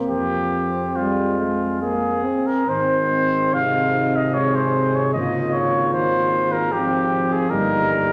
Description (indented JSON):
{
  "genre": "classical, hymn-like piece for brass band",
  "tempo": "67-77 BPM",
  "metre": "3/4",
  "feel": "rubato",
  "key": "Ab major",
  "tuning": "A4 = 443 Hz",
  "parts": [
    { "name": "warm French horn section", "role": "second line", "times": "0.0-8.1 s", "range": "C4 to Ab4", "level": "-29 LUFS", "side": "equal", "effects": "none" },
    { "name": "warm euphonium", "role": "accompaniment", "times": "0.0-8.1 s", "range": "Ab3 to C4", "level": "-32 LUFS", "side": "equal", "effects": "none" },
    { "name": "clear cornet", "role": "melody", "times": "0.1-8.1 s", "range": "F4 to F5", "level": "-23 LUFS", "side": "equal", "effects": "none" },
    { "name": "warm trombone", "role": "accompaniment", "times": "0.1-8.1 s", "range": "C3 to C4", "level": "-27 LUFS", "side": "equal", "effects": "none" },
    { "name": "mellow tuba", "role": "bass", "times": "0.1-8.1 s", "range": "G1 to F2", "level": "-31 LUFS", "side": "equal", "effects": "none" }
  ],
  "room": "wet scoring stage reverb, RT60 1.9 s",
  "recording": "none",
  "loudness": "-20 LUFS",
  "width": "mono",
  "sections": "0.0-2.7 A section; 2.7-8.1 B section",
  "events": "none",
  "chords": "0.1 Fm; 2.7 Ab; 5.1 Bbm7/Ab; 7.5 Eb/G",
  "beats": "| 0.10 0.96 1.82 | 2.67 3.54 4.34 | 5.14 5.94 6.72 | 7.51"
}